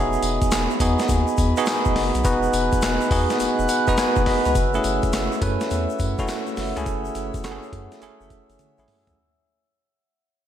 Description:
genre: R&B, new jack swing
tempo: 104 BPM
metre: 4/4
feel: swing 66% on 16ths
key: F# dorian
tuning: A4 = 440 Hz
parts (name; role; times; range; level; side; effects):
- bell-like tine electric piano; accompaniment; 0.0-9.2 s; A3 to B5; -23 LUFS; right 1 dB; medium stereo tremolo
- glass harmonica; sustained chords; 0.0-9.1 s; C#5 to F#6; -28 LUFS; equal; none
- round analog bass; bass; 0.0-9.2 s; E1 to F#2; -26 LUFS; left 1 dB; none
- tube shaker; percussion; 0.1-9.2 s; none; -40 LUFS; left 8 dB; none
- boom bap sampler-style drum kit; drums; 0.2-9.2 s; handclaps, hi-hat, kick drum, snare drum, tambourine, toms; -25 LUFS; left 1 dB; none
room: moderate lush hall reverb, RT60 1.8 s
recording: big arena sound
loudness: -19 LUFS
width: side -10 dB against mid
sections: 0.0-4.6 A section; 4.6-9.2 B section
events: tine electric piano fill 3.4-4.6; fade-out 4.6-9.2; drum fill 8.6-9.2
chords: 0.0 Emaj7; 4.6 F#m7

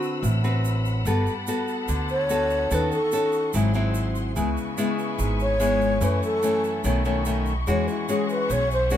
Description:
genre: bossa nova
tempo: 145 BPM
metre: 4/4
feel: straight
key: E major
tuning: A4 = 440 Hz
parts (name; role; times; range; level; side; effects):
- breathy wooden-headed alto flute; melody; 0.0-9.0 s; E4 to C#5; -24 LUFS; equal; none
- nylon-string guitar; accompaniment; 0.0-9.0 s; F#2 to B4; -25 LUFS; left 2 dB; none
- muted symphonic string section; sustained chords; 0.0-9.0 s; G#4 to E6; -33 LUFS; left 3 dB; none
- egg shaker; percussion; 0.0-9.0 s; none; -39 LUFS; right 7 dB; none
- upright bass; bass; 0.2-9.0 s; G1 to F#2; -25 LUFS; right 1 dB; none
room: little or no reverb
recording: close, detailed microphones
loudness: -21 LUFS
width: side -10 dB against mid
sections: 0.0-9.0 A section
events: alto flute solo 0.0-9.0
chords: 0.0 D13; 1.1 Gmaj9; 2.7 D#m7b5; 3.5 G#7b13; 4.4 C#m7; 6.0 F#m7; 6.8 B9; 7.7 E69

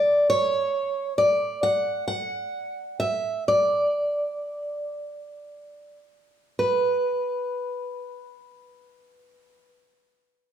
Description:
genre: folk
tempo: 35-45 BPM (dotted quarters)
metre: 6/8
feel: straight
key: B minor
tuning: A4 = 440 Hz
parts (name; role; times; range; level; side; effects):
- picked steel-string acoustic guitar; melody; 0.0-9.7 s; B4 to F#5; -23 LUFS; equal; none
room: light reverb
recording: band playing live in one room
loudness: -23 LUFS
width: side -9 dB against mid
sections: 0.0-6.6 A section; 6.6-10.0 B section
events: slowing down 0.7-6.6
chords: none

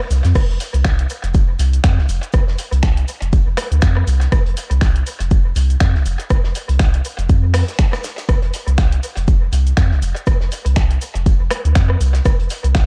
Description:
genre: deep house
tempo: 121 BPM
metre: 4/4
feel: swing 57% on 16ths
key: unclear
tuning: A4 = 441 Hz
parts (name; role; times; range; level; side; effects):
- house drum kit; drums; 0.0-12.9 s; crash cymbal, finger snaps, hi-hat, rim click, shaker; -28 LUFS; equal; vintage 12-bit sampler grit, dub echo
- round analog bass; bass; 0.1-12.9 s; F1 to F2; -18 LUFS; equal; tube saturation, sidechain pumping
- loose indie drum kit; drums; 0.1-12.9 s; hi-hat, shaker, snare drum; -39 LUFS; equal; none
- electronic kick drum; drums; 0.4-12.9 s; none; -17 LUFS; equal; vintage 12-bit sampler grit
room: little or no reverb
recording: echo-heavy mix, cassette tape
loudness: -16 LUFS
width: mono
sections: 0.0-12.9 A section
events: none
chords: none

